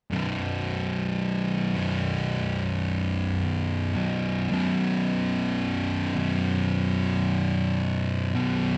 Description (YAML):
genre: metal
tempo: 54 BPM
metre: 4/4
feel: straight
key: unclear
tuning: A4 = 441 Hz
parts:
  - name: thick fuzz guitar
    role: riff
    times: 0.1-8.8 s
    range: B1 to B2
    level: -29 LUFS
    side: equal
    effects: distortion
  - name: thick fuzz guitar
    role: riff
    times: 0.1-8.8 s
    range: B1 to B2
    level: -30 LUFS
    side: equal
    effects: distortion
room: moderate echo chamber reverb, RT60 2.1 s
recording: none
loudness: -27 LUFS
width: mono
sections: 0.1-8.8 A section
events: none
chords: 0.1 B5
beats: | 0.11 1.21 2.31 3.41 | 4.51 5.61 6.71 7.81